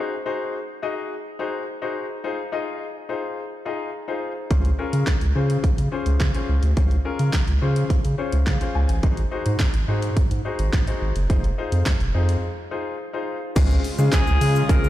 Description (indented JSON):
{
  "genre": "dance-pop",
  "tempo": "106 BPM",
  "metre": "4/4",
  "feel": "straight",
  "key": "Db major",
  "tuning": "A4 = 440 Hz",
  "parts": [
    { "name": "warm grand piano", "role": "accompaniment", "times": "0.0-14.8 s", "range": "Ab3 to Ab5", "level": "-28 LUFS", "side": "left 4 dB", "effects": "sidechain pumping" },
    { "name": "saturated sub bass", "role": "bass", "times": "4.5-14.9 s", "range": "F1 to Db3", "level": "-20 LUFS", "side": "equal", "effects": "sidechain pumping" },
    { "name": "house drum kit", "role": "drums", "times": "4.5-14.9 s", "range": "crash cymbal, handclaps, hi-hat, kick drum, shaker, snare drum", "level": "-22 LUFS", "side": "equal", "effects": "none" },
    { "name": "supersaw pad", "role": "sustained chords", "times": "13.6-14.9 s", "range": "Db3 to F4", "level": "-29 LUFS", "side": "right 1 dB", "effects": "sidechain pumping" },
    { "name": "breathy alto saxophone", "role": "melody", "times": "14.1-14.9 s", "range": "Ab4 to Bb4", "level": "-24 LUFS", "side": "left 2 dB", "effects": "none" }
  ],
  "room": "little or no reverb",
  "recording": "played on a big sound system in a bare room, stone room reverb",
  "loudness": "-20 LUFS",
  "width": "side -14 dB against mid",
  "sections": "0.0-13.6 A section; 13.6-14.9 B section",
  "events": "grand piano fill 7.9-9.0; break 12.4-13.6",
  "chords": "0.0 Ab7; 2.2 Fm7; 4.5 Dbmaj7; 9.0 Ab7; 11.3 Fm7; 13.6 Dbmaj7",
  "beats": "0.54 1.11 1.68 | 2.24 2.81 3.37 3.94 | 4.51 5.07 5.64 6.20 | 6.77 7.34 7.90 8.47 | 9.03 9.60 10.17 10.73 | 11.30 11.86 12.43 13.00 | 13.56 14.13 14.69"
}